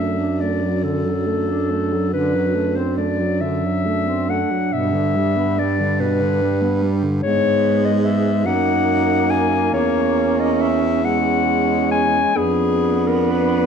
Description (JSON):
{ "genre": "classical, lyrical piece for single-reed quartet", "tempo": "47 BPM (dotted quarters)", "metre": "6/8", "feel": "uneven beats, rubato", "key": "G major", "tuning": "A4 = 439 Hz", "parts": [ { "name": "mellow clarinet", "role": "melody", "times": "0.0-13.7 s", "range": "Ab4 to G#5", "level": "-21 LUFS", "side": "left 7 dB", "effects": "none" }, { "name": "mellow alto saxophone", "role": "second line", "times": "0.0-13.7 s", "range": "B3 to D#4", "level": "-23 LUFS", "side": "right 11 dB", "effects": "none" }, { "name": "mellow tenor saxophone", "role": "accompaniment", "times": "0.0-13.7 s", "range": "B2 to D4", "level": "-24 LUFS", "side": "left 1 dB", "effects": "none" }, { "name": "clear baritone saxophone", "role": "bass", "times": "0.0-13.7 s", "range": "E2 to G#2", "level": "-22 LUFS", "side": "right 2 dB", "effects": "none" } ], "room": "moderate recital hall reverb, RT60 1.6 s", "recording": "dark, warm production", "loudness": "-16 LUFS", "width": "side -7 dB against mid", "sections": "0.0-13.7 A section", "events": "none", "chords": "0.0 D/F#; 2.1 D7/F#; 4.7 G; 7.2 G#m; 9.7 C#m/E; 12.4 Fdim7" }